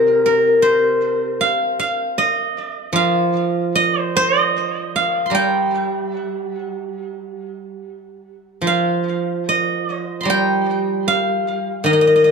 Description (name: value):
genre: chinese traditional, Chinese solo plucked strings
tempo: 74 BPM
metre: 4/4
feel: uneven beats, rubato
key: unclear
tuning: A4 = 437 Hz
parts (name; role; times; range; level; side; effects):
- steel-string zither; solo; 0.0-12.3 s; C3 to C6; -16 LUFS; equal; tape echo
room: moderate recital hall reverb, RT60 1.4 s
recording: dark, warm production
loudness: -16 LUFS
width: side -5 dB against mid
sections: 0.0-8.6 A section; 8.6-12.3 B section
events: none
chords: none